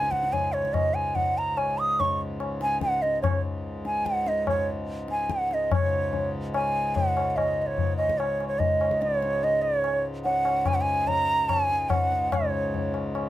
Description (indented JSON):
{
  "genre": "indian classical, Hindustani",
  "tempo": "145 BPM",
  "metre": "4/4",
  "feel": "straight",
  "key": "Db raga durga",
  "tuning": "A4 = 440 Hz",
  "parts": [
    { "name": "bansuri", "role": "melody", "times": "0.0-12.9 s", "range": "Db5 to Eb6", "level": "-24 LUFS", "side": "right 1 dB", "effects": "none" },
    { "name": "hand-pumped harmonium", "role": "drone", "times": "0.0-13.3 s", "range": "Db2 to Ab2", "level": "-33 LUFS", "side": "left 1 dB", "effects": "none" },
    { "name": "tabla", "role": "percussion", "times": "0.0-13.3 s", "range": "none", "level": "-29 LUFS", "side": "left 4 dB", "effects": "none" }
  ],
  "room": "little or no reverb",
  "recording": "close, detailed microphones",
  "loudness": "-23 LUFS",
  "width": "side -14 dB against mid",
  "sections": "0.0-5.7 A section; 5.7-13.3 B section",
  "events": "none",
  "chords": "none"
}